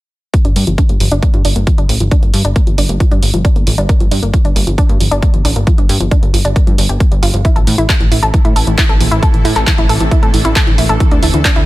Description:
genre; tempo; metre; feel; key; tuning
uplifting trance; 135 BPM; 4/4; straight; G dorian; A4 = 439 Hz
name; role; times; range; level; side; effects
analog pluck; arpeggios; 0.3-11.6 s; E3 to A4; -18 LUFS; right 1 dB; chorus, sidechain pumping, ping-pong delay
electronic kick drum; drums; 0.3-11.5 s; none; -11 LUFS; equal; overdrive
punchy analog drum machine; drums; 0.3-11.6 s; handclaps, hi-hat; -19 LUFS; right 1 dB; none
plucky analog bass; bass; 0.4-11.6 s; D1 to A2; -15 LUFS; equal; sidechain pumping
shimmering ambient pad; sustained chords; 8.2-11.7 s; C3 to A4; -22 LUFS; right 1 dB; chorus, built-in reverb, sidechain pumping
room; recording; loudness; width
little or no reverb; none; -9 LUFS; side -17 dB against mid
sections
0.3-11.7 A section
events
filter sweep on synth arpeggio sound 0.3-11.7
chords
0.3 Gm7; 7.4 Am; 11.0 Dmadd9

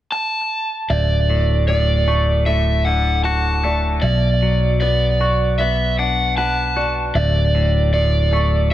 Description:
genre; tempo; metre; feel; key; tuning
rock; 77 BPM; 4/4; straight; D major; A4 = 439 Hz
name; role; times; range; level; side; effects
raw garage guitar; melody; 0.1-8.7 s; D5 to A5; -20 LUFS; right 2 dB; overdrive, analog delay
felt-muted upright piano; arpeggios; 0.9-8.7 s; D5 to C#6; -27 LUFS; right 1 dB; analog delay
twangy electric guitar; arpeggios; 0.9-8.7 s; D2 to B4; -24 LUFS; left 6 dB; analog delay
fingered electric bass; bass; 0.9-8.7 s; D1 to B1; -18 LUFS; equal; none
room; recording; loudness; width
light reverb; none; -15 LUFS; side -13 dB against mid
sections
0.9-8.7 A section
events
none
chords
0.0 N.C.; 0.9 D; 4.0 Bm7; 7.2 D5

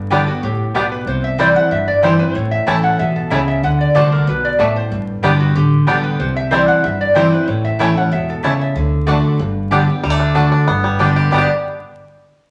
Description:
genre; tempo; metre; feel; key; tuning
bluegrass; 187 BPM; 4/4; straight; G major; A4 = 440 Hz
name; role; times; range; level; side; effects
picked steel-string acoustic guitar; accompaniment; 0.0-11.5 s; G2 to G4; -19 LUFS; equal; none
upright bass; bass; 0.0-11.5 s; E1 to D2; -27 LUFS; equal; none
bluegrass banjo; melody; 0.1-11.5 s; G3 to G4; -24 LUFS; equal; none
lap resonator guitar; melody; 0.1-8.8, 11.3-11.5 s; E4 to G5; -20 LUFS; equal; none
mandolin; stabs; 0.1-11.4 s; A3 to A5; -23 LUFS; equal; none
room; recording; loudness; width
wet large studio reverb, RT60 1.1 s; vinyl crackle, nothing above 10.9 kHz; -15 LUFS; mono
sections
0.0-10.0 A section; 10.0-11.3 B section; 11.3-12.5 C section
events
none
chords
0.0 G; 1.1 C; 2.4 A; 3.6 D; 4.9 G; 6.2 C; 7.5 A; 8.8 D; 9.4 G; 10.0 D; 10.7 G

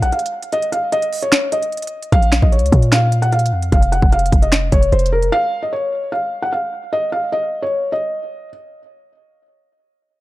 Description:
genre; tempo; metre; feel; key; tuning
hip hop, trap; 150 BPM; 4/4; half-time; Bb minor; A4 = 441 Hz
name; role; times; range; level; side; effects
felt-muted upright piano; melody; 0.0-8.5 s; Bb4 to Gb5; -19 LUFS; equal; tape echo
warm 808-style bass; bass; 0.0-5.3 s; F1 to Bb2; -16 LUFS; equal; none
trap drum kit; drums; 0.0-5.3 s; finger snaps, hi-hat, kick drum, snare drum; -16 LUFS; equal; none
room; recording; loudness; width
digital ambience; dark, warm production; -14 LUFS; side -17 dB against mid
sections
0.0-2.1 A section; 2.1-8.5 B section; 8.5-10.2 C section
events
kick muted 0.5-2.1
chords
0.0 Bb5; 0.5 N.C.; 2.1 Bbm; 3.7 N.C.

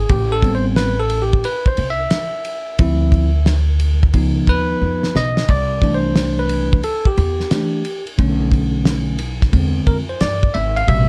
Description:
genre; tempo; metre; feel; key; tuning
hip hop, jazz-hop; 89 BPM; 4/4; swing 65% on 16ths; C major; A4 = 440 Hz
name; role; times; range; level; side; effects
bell-like tine electric piano; accompaniment; 0.0-11.1 s; B2 to F5; -22 LUFS; equal; none
upright bass; bass; 0.1-11.1 s; G#1 to G2; -21 LUFS; equal; none
cloth-damped thuddy drum kit; drums; 0.1-11.1 s; hi-hat, kick drum, ride cymbal, snare drum; -22 LUFS; equal; none
room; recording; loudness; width
light reverb; dark, warm production, lossy compression artefacts; -17 LUFS; mono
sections
0.0-11.1 A section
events
tine electric piano solo 0.0-11.1; drum fill 4.8-5.5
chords
0.1 Am7; 2.8 Dm9; 4.1 Db9; 5.5 C69; 8.2 Bm7; 9.5 E7alt

